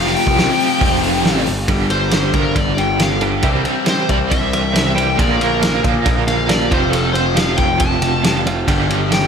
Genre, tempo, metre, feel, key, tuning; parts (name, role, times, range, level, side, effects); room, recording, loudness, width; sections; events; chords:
quiet-loud alternative rock; 137 BPM; 4/4; straight; G dorian; A4 = 440 Hz
dark smooth lead guitar; melody; 0.0-9.3 s; A4 to A5; -20 LUFS; left 2 dB; overdrive, digital delay
heavy high-gain guitar; riff; 0.0-1.5 s; F2 to F3; -24 LUFS; equal; distortion
overdriven electric guitar; riff; 0.0-9.3 s; F2 to C4; -23 LUFS; right 12 dB; tremolo, slapback echo
overdriven semi-hollow guitar; riff; 0.0-9.3 s; F2 to C4; -22 LUFS; left 11 dB; phaser, slapback echo
fuzz picked electric bass; bass; 0.0-9.3 s; F1 to Bb2; -21 LUFS; equal; overdrive
loose indie drum kit; drums; 0.1-9.2 s; hi-hat, kick drum, ride cymbal, snare drum; -19 LUFS; equal
twelve-string electric guitar; arpeggios; 1.7-9.3 s; F2 to Bb3; -23 LUFS; right 5 dB; tremolo, digital delay
moderate lush hall reverb, RT60 2.2 s; big arena sound; -13 LUFS; side -6 dB against mid
0.0-1.7 A section; 1.7-9.3 B section
lead electric guitar solo 1.7-9.3
0.0 Fsus2; 1.7 G5; 3.4 C; 5.2 Bb; 6.7 F; 8.7 G5